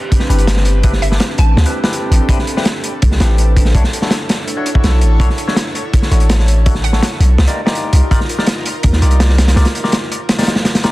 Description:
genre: drum and bass, jungle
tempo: 165 BPM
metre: 4/4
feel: straight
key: unclear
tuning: A4 = 441 Hz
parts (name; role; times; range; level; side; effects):
- airy breathy pad; sustained chords; 0.0-10.9 s; C4 to C#5; -24 LUFS; right 2 dB; chorus
- crunchy breakbeat drum kit; drums; 0.1-10.9 s; hi-hat, kick drum, snare drum; -15 LUFS; equal; none
- barky tine electric piano; stabs; 0.3-10.9 s; C4 to D5; -22 LUFS; left 3 dB; overdrive, phaser, dub echo
- long sustained 808-style bass; bass; 0.3-9.6 s; G1 to Eb2; -11 LUFS; equal; none
- hollow square pluck; melody; 1.0-1.7, 6.8-7.1 s; E5 to A5; -25 LUFS; right 3 dB; analog chorus, dub echo
room: small room ambience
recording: dense, heavily limited modern master, vinyl crackle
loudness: -11 LUFS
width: side -18 dB against mid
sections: 0.0-10.9 A section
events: none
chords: 0.0 Am11; 3.7 Bm11; 7.4 Cm11

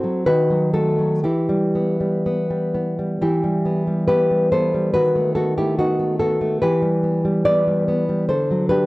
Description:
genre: romantic piece for solo classical guitar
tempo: 58-73 BPM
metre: 2/4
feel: rubato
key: E minor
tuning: A4 = 440 Hz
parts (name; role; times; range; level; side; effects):
- nylon-string guitar; solo; 0.0-8.9 s; D3 to D5; -17 LUFS; equal; none
room: light reverb, studio reverb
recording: dry, gritty hardware recording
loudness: -17 LUFS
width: side -20 dB against mid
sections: 0.0-3.2 A section; 3.2-8.9 B section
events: none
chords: 0.3 B7/D#; 1.3 Em; 5.0 B7/D#; 6.6 Em; 8.3 D

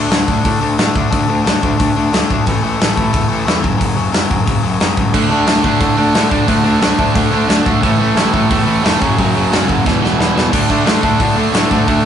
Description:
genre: punk rock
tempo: 179 BPM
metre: 4/4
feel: straight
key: unclear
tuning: A4 = 440 Hz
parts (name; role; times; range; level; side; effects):
- crunchy overdriven guitar; riff; 0.0-12.1 s; E2 to D4; -17 LUFS; left 4 dB; none
- fuzz picked electric bass; bass; 0.0-12.0 s; E1 to A2; -20 LUFS; equal; overdrive
- big rock drum kit; drums; 0.1-12.0 s; crash cymbal, hi-hat, kick drum, snare drum; -16 LUFS; equal; none
- crunchy overdriven guitar; riff; 5.1-12.1 s; E2 to D4; -16 LUFS; right 4 dB; none
room: light reverb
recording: rough rehearsal-room recording, nothing above 11.0 kHz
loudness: -12 LUFS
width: side -8 dB against mid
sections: 0.0-10.5 A section; 10.5-12.1 B section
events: drum fill 9.9-10.5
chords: 0.0 D5; 2.5 A5; 3.6 F#5; 5.2 D5; 7.8 A5; 9.0 F#5; 9.9 E5; 10.5 D5

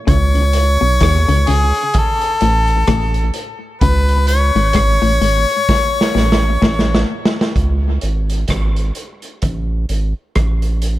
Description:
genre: dub reggae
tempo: 64 BPM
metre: 4/4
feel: swing 58% on 16ths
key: unclear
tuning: A4 = 445 Hz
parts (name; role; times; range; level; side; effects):
- bright harmonica; melody; 0.1-7.0 s; G#4 to C#5; -17 LUFS; left 2 dB; tape echo
- semi-hollow electric guitar; riff; 0.1-6.9 s; G#2 to D#3; -22 LUFS; left 5 dB; tape echo
- soft dub sub bass; bass; 0.1-11.0 s; G#1 to D#2; -15 LUFS; right 1 dB; none
- vintage drum kit; drums; 0.1-11.0 s; hi-hat, kick drum, rim click, snare drum; -18 LUFS; right 1 dB; none
room: light reverb, small room ambience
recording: echo-heavy mix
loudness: -13 LUFS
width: side -15 dB against mid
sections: 0.0-7.6 A section; 7.6-11.0 B section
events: drum fill 5.7-7.6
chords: 0.1 B69; 1.9 N.C.; 3.8 C#5; 5.7 A; 7.6 C#5; 9.4 N.C.

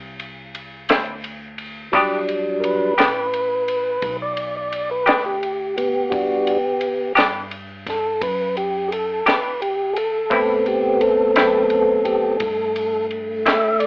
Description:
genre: slow blues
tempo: 57 BPM (dotted quarters)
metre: 12/8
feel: straight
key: E minor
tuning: A4 = 440 Hz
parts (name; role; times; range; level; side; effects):
- upright bass; bass; 0.0-13.9 s; A1 to A2; -38 LUFS; equal; tube saturation
- compact cocktail drum kit; drums; 0.2-13.9 s; kick drum, ride cymbal, snare drum; -27 LUFS; equal; none
- semi-hollow electric guitar; accompaniment; 0.9-13.7 s; A2 to G4; -18 LUFS; left 1 dB; tremolo
- tonewheel organ; sustained chords; 1.9-13.9 s; F#3 to E5; -18 LUFS; equal; slow rotary speaker, overdrive
room: moderate studio reverb, RT60 0.8 s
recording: worn, warbling old tape, cassette tape, warbly pitch drift, telephone sound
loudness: -17 LUFS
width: side -26 dB against mid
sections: 0.0-13.9 A section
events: tonewheel organ solo 0.0-13.9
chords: 0.0 N.C.; 1.9 Em7; 10.3 Am7

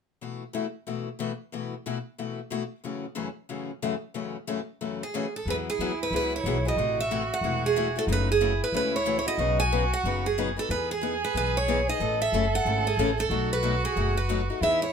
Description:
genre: acoustic string swing (jazz manouche)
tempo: 184 BPM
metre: 4/4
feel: swing 61% on 8ths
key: unclear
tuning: A4 = 440 Hz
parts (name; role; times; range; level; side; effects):
- picked steel-string acoustic guitar; accompaniment; 0.2-14.8 s; F#2 to B4; -31 LUFS; left 6 dB; none
- picked steel-string acoustic guitar; melody; 5.0-14.9 s; G#4 to G#5; -27 LUFS; right 2 dB; none
- warm violin; second line; 5.5-14.9 s; D#4 to A4; -32 LUFS; right 6 dB; none
- upright bass; bass; 5.5-14.9 s; E1 to E2; -30 LUFS; equal; none
room: light reverb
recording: minimal, uncompressed stereo recording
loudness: -25 LUFS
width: side -7 dB against mid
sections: 0.2-5.5 A section; 5.5-14.9 B section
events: none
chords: 0.2 B7sus4; 2.8 F#m7; 5.5 Eadd9; 6.8 Am6; 8.1 F#m7; 9.4 Badd9; 10.7 Emaj7; 12.0 A; 13.3 B7

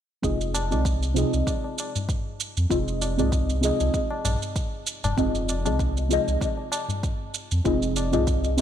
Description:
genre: organic downtempo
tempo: 97 BPM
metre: 4/4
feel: swing 55% on 16ths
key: F minor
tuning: A4 = 439 Hz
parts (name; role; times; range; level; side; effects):
- deep mellow chord stab; accompaniment; 0.2-8.6 s; C4 to Eb5; -26 LUFS; equal; chorus, phaser, sidechain pumping, ping-pong delay
- warm sub bass; bass; 0.2-8.6 s; F1 to F2; -26 LUFS; equal; sidechain pumping
- electronic kick drum; drums; 0.2-8.4 s; none; -28 LUFS; equal; studio reverb
- shaker; drums; 0.2-8.6 s; none; -33 LUFS; right 7 dB; studio reverb
- tabla; percussion; 0.5-8.6 s; none; -32 LUFS; left 3 dB; none
room: moderate plate reverb, RT60 2.8 s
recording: bright 1980s-style digital production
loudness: -22 LUFS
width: side -10 dB against mid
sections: 0.2-8.6 A section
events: filter sweep on sub bass 0.2-8.6; filter sweep on synth stab 0.2-8.6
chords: 0.2 Fm7

